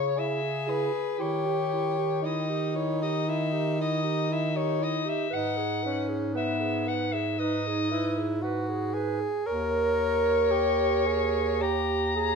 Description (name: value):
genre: classical, lyrical piece for single-reed quartet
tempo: 58 BPM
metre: 4/4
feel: rubato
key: unclear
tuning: A4 = 441 Hz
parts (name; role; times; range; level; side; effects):
- clear soprano saxophone; melody; 0.0-12.4 s; B4 to A#5; -30 LUFS; left 8 dB; none
- clear clarinet; second line; 0.0-12.4 s; E4 to B4; -32 LUFS; right 12 dB; none
- warm bass clarinet; bass; 0.0-12.4 s; D#2 to D#3; -32 LUFS; right 2 dB; none
- warm tenor saxophone; accompaniment; 0.2-12.4 s; B3 to A#4; -30 LUFS; equal; none
room: moderate recital hall reverb, RT60 1.3 s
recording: minimal, uncompressed stereo recording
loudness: -25 LUFS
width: side -5 dB against mid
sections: 0.0-12.4 A section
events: none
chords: 0.0 C#m; 1.2 D#7b9; 5.3 G#m; 9.5 D#7